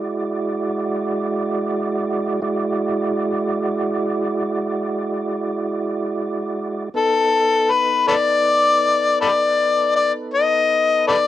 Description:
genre	blues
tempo	53 BPM (dotted quarters)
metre	12/8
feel	straight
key	E mixolydian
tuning	A4 = 443 Hz
part	mellow tonewheel organ	sustained chords	0.0-11.3 s	G#3 to D5	-22 LUFS	right 2 dB	slow rotary speaker, overdrive, chorus vibrato, cassette tape
part	warm harmonica	melody	7.0-11.3 s	A4 to D#5	-15 LUFS	left 4 dB	overdrive, cassette tape
room	moderate studio reverb, RT60 0.6 s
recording	home recording on cassette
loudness	-17 LUFS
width	side -12 dB against mid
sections	0.0-11.3 A section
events	none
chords	0.0 E9; 6.9 B7

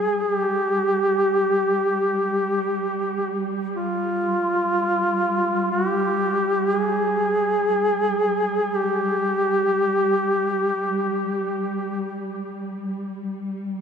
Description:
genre	caucasian folk, Caucasian lament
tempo	free time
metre	none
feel	none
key	unclear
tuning	A4 = 441 Hz
part	warm duduk	melody	0.0-12.3 s	F4 to Ab4	-21 LUFS	equal	diffuse ambient delay
part	dark chamber cello section	drone	0.0-13.8 s	G3	-28 LUFS	equal	stereo widening
room	wet plate reverb, RT60 3.2 s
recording	dreamy mix soaked in reverb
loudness	-20 LUFS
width	side -7 dB against mid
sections	0.0-13.8 A section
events	none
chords	none

